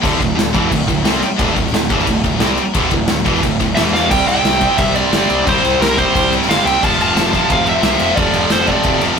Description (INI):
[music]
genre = heavy metal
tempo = 177 BPM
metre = 4/4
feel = straight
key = unclear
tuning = A4 = 440 Hz
[part]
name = heavy high-gain guitar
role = riff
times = 0.0-9.2 s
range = D2 to C4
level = -21 LUFS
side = left 7 dB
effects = distortion
[part]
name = heavy high-gain guitar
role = riff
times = 0.0-9.2 s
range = D2 to C4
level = -21 LUFS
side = right 5 dB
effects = distortion
[part]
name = heavy high-gain guitar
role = riff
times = 0.0-9.2 s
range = D2 to C4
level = -20 LUFS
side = equal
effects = distortion
[part]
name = fuzz picked electric bass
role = bass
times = 0.0-9.1 s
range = D1 to C2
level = -22 LUFS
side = left 1 dB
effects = overdrive
[part]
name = big rock drum kit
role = drums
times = 0.0-9.1 s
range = crash cymbal, kick drum, snare drum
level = -18 LUFS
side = equal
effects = none
[part]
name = high-gain lead guitar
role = melody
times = 3.7-9.0 s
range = Bb4 to A5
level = -16 LUFS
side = right 1 dB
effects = distortion
[part]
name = high-gain lead guitar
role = second line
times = 3.8-9.0 s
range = G4 to F5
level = -27 LUFS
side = right 2 dB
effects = none
[sound]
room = light reverb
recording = rough rehearsal-room recording, tube saturation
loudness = -12 LUFS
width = side -6 dB against mid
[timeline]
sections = 0.0-4.1 A section; 4.1-9.2 B section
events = drum fill 3.9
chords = 0.0 D5; 3.8 E5; 4.1 C; 6.8 F